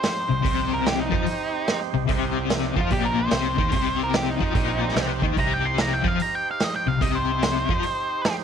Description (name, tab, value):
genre	blues rock power trio and southern rock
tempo	146 BPM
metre	4/4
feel	swing 64% on 8ths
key	C minor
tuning	A4 = 440 Hz
part	octave-fuzz lead guitar	melody	0.0-8.3 s	Eb4 to C6	-27 LUFS	equal	distortion
part	overdriven tonewheel organ	sustained chords	0.0-8.4 s	C4 to C5	-33 LUFS	right 14 dB	lush chorus
part	vintage drum kit	drums	0.0-8.4 s	hi-hat, kick drum, snare drum	-26 LUFS	right 2 dB	none
part	overdriven electric guitar	riff	0.3-7.8 s	Bb2 to F3	-25 LUFS	left 9 dB	tremolo
part	fuzz fingered electric bass	bass	0.3-7.8 s	Bb1 to F2	-29 LUFS	right 2 dB	overdrive
room	small room ambience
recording	1960s-style stereo with parts hard left and right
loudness	-21 LUFS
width	side -8 dB against mid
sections	0.0-8.4 A section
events	none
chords	0.0 Cm